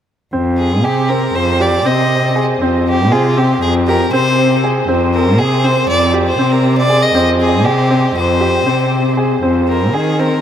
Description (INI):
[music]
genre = contemporary instrumental, chamber music in an uneven meter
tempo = 238 BPM (eighths)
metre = 9/8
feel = straight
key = F dorian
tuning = A4 = 439 Hz
[part]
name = clear baby grand piano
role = arpeggios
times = 0.3-10.4 s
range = C4 to Ab4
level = -16 LUFS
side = equal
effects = none
[part]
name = muted cello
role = bass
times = 0.3-10.4 s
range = F2 to Eb3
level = -16 LUFS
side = equal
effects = none
[part]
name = clear violin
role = melody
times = 0.6-10.4 s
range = F4 to Eb5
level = -16 LUFS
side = equal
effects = none
[sound]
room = wet huge ambient reverb, RT60 7.8 s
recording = in a vast, echoing space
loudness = -11 LUFS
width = side -9 dB against mid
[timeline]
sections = 0.3-10.4 A section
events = none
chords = 0.3 Fm; 9.4 Ab/F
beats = | 0.34 0.59 0.85 1.10 1.36 1.61 1.87 2.12 2.37 | 2.62 2.88 3.13 3.38 3.63 3.88 4.13 4.39 4.64 | 4.89 5.14 5.39 5.64 5.89 6.14 6.39 6.64 6.90 | 7.15 7.40 7.65 7.91 8.16 8.41 8.67 8.92 9.18 | 9.43 9.69 9.94 10.20